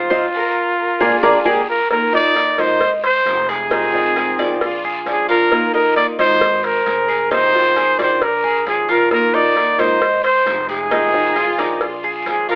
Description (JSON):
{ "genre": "latin, Cuban son and guajira", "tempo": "133 BPM", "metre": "4/4", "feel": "straight", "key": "unclear", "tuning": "A4 = 440 Hz", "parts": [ { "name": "breathy trumpet", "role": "melody", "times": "0.0-12.6 s", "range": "F4 to D5", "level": "-15 LUFS", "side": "equal", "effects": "none" }, { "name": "picked swing-style acoustic guitar", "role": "accompaniment", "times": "0.0-12.6 s", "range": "C3 to Bb4", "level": "-22 LUFS", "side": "equal", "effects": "none" }, { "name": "Cuban tres", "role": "arpeggios", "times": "0.0-12.6 s", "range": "Eb4 to F5", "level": "-20 LUFS", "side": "equal", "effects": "none" }, { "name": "upright bass", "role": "bass", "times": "0.0-12.6 s", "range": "F1 to F2", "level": "-35 LUFS", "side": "equal", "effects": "none" }, { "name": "bongos and cowbell", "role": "percussion", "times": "0.1-12.5 s", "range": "none", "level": "-24 LUFS", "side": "left 1 dB", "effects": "none" }, { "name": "guiro", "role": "percussion", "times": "0.1-12.6 s", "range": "none", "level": "-32 LUFS", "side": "left 1 dB", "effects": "none" }, { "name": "warm chamber violin section", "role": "second line", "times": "0.3-4.9, 11.1-12.2 s", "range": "C4 to Bb4", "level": "-25 LUFS", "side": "equal", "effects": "none" } ], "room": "moderate studio reverb, RT60 0.8 s", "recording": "telephone sound", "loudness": "-13 LUFS", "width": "side -30 dB against mid", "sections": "0.0-1.9 A section; 1.9-12.6 B section", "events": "band accent 0.1-1.9; drum fill 1.2-1.9", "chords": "0.1 F5; 1.0 Bb7; 1.9 Ebsus2; 2.8 Ab; 3.7 Fm7; 4.6 Bb7; 5.5 Ebsus2; 6.4 Ab; 7.3 Fm7; 8.2 Bb7; 9.1 Ebsus2; 10.0 Ab; 10.9 Fm7; 11.8 Bb7", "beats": "| 0.11 0.56 1.01 1.46 | 1.91 2.36 2.81 3.26 | 3.71 4.16 4.61 5.06 | 5.51 5.96 6.42 6.87 | 7.32 7.76 8.22 8.67 | 9.12 9.57 10.02 10.47 | 10.92 11.37 11.82 12.27" }